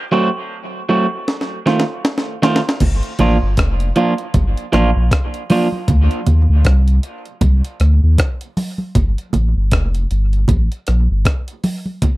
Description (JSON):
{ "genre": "dub reggae", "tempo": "78 BPM", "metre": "4/4", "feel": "swing 59% on 16ths", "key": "G minor", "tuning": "A4 = 443 Hz", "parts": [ { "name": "electric guitar at the edge of break-up", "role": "accompaniment", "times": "0.1-5.7 s", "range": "Eb3 to F#4", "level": "-18 LUFS", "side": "right 2 dB", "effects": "spring reverb, dub echo" }, { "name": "breakbeat sampler-style drum kit", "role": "drums", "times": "1.3-12.2 s", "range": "crash cymbal, hi-hat, kick drum, rim click, snare drum", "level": "-18 LUFS", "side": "equal", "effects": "none" }, { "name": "warm sub bass", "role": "bass", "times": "2.8-11.2 s", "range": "F1 to Eb2", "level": "-14 LUFS", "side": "equal", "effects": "none" }, { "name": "congas", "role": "percussion", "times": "2.8-12.2 s", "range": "none", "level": "-21 LUFS", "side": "right 2 dB", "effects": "dub echo" } ], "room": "little or no reverb", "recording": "dry, close 1970s-style studio recording", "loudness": "-14 LUFS", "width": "side -19 dB against mid", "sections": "0.0-2.8 A section; 2.8-12.2 A section", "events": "break 0.0-2.8; drum fill 1.3-2.8", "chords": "0.0 F#dim; 1.3 F7; 2.8 Gm7; 5.9 Cmadd9; 9.0 G7(no3)" }